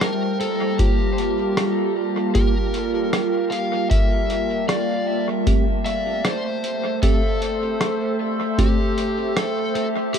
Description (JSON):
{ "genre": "ambient dub", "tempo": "77 BPM", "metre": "4/4", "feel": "swing 58% on 16ths", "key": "G dorian", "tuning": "A4 = 440 Hz", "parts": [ { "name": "overdriven slide guitar", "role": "melody", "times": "0.0-10.2 s", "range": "G4 to F5", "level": "-25 LUFS", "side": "left 2 dB", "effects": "dub echo" }, { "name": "warbly tape-like pad", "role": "sustained chords", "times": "0.0-10.2 s", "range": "G3 to A5", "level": "-24 LUFS", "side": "right 1 dB", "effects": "chorus, built-in reverb, phaser, vintage 12-bit sampler grit" }, { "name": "lo-fi sampler-style drum kit", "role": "drums", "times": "0.0-10.2 s", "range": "hi-hat, rim click", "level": "-28 LUFS", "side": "equal", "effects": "overdrive, dub echo" }, { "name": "mellow tine electric piano", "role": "stabs", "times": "0.8-8.8 s", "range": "A3 to G4", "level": "-30 LUFS", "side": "right 2 dB", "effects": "none" }, { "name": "electronic kick drum", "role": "drums", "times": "0.8-8.8 s", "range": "none", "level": "-20 LUFS", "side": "equal", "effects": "none" } ], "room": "light reverb", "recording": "echo-heavy mix", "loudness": "-19 LUFS", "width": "side -7 dB against mid", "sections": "0.0-10.2 A section", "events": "none", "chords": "0.0 Gm7; 5.5 Am7" }